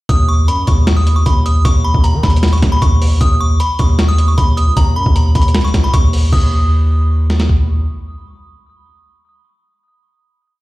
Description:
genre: hip hop, trap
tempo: 154 BPM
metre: 4/4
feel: half-time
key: unclear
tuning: A4 = 440 Hz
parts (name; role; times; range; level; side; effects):
- delicate synth tine bell; melody; 0.1-7.5 s; A#5 to Eb6; -20 LUFS; equal; chorus, tape echo
- distorted 808-style bass; bass; 0.1-7.8 s; C#2 to D#3; -13 LUFS; equal; distortion
- lo-fi sampler-style drum kit; drums; 0.1-7.6 s; crash cymbal, hi-hat, kick drum, snare drum; -14 LUFS; equal; none
room: digital ambience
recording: played on a big sound system in a bare room, large studio reverb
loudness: -10 LUFS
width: side -18 dB against mid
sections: 0.1-6.3 hook; 6.3-9.4 final note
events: none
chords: 0.1 N.C.; 1.6 Badd9/D#; 3.2 Badd9; 4.8 Db7sus2; 6.3 N.C.

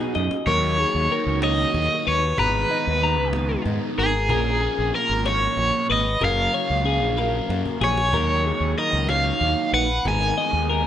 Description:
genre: math rock and midwest emo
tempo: 63 BPM (dotted quarters)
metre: 6/8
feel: straight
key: unclear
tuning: A4 = 440 Hz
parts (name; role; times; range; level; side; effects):
- crunchy overdriven guitar; melody; 0.0-10.9 s; D#4 to G#5; -23 LUFS; right 1 dB; tremolo
- electric guitar through a small old amp; accompaniment; 0.0-2.4 s; B2 to G#4; -34 LUFS; right 8 dB; ensemble chorus
- twelve-string electric guitar; arpeggios; 0.0-10.9 s; G#4 to A#5; -27 LUFS; left 8 dB; spring reverb
- raw garage guitar; riff; 0.0-10.9 s; A#2 to D#4; -28 LUFS; right 2 dB; overdrive, phaser
- cajon; drums; 0.1-10.8 s; none; -33 LUFS; equal; none
- fuzz fingered electric bass; bass; 0.2-10.8 s; F#1 to G#2; -25 LUFS; equal; overdrive
room: light reverb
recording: rough home demo mix, nothing above 11.0 kHz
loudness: -19 LUFS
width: side -10 dB against mid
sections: 0.5-10.9 A section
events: drum fill 0.0-0.5, 7.2-8.1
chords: 0.5 D#m7; 2.4 G#m; 4.3 A#m7; 6.2 F#maj9; 8.1 D#m7; 10.1 G#m

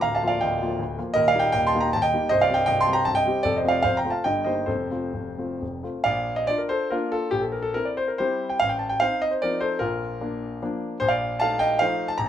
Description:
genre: classical, romantic triple-time dance for piano with dotted rhythms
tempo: 120-174 BPM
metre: 3/4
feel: rubato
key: Bb major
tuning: A4 = 440 Hz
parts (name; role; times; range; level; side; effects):
- warm concert grand piano; solo; 0.0-12.3 s; C1 to C6; -21 LUFS; equal; none
room: moderate large studio reverb, RT60 1.1 s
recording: minimal, uncompressed stereo recording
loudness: -21 LUFS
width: side -10 dB against mid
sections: 0.0-6.1 A section; 6.1-12.3 B section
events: none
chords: 0.0 Bb/D; 1.2 Eb; 2.3 Cm; 3.5 F; 4.3 Eb/G; 4.7 F; 6.1 Bb; 7.3 C7/Bb; 8.6 F7/A; 9.8 Bb; 11.0 F7/Bb

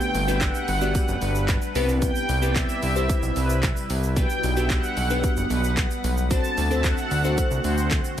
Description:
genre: dance-pop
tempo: 112 BPM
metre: 4/4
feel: straight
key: G major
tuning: A4 = 440 Hz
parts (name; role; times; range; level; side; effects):
- supersaw pad; melody; 0.0-7.8 s; B4 to A5; -28 LUFS; right 1 dB; tape echo
- glassy digital keys; accompaniment; 0.0-8.0 s; B3 to D5; -28 LUFS; left 2 dB; chorus
- ethereal airy pad; sustained chords; 0.0-8.2 s; C3 to F#5; -32 LUFS; equal; ensemble chorus, built-in reverb, sidechain pumping
- pop drum kit; drums; 0.0-8.2 s; handclaps, hi-hat, kick drum, shaker; -26 LUFS; equal; none
- tube shaker; percussion; 0.0-8.2 s; none; -42 LUFS; right 8 dB; none
- fat analog bass; bass; 0.1-8.2 s; F#1 to D2; -24 LUFS; equal; sidechain pumping
room: digital ambience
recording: none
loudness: -21 LUFS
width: side -10 dB against mid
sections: 0.0-8.2 A section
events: none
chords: 0.0 Gmaj7; 1.8 Cmaj7; 4.2 Gmaj7/B; 6.3 D7

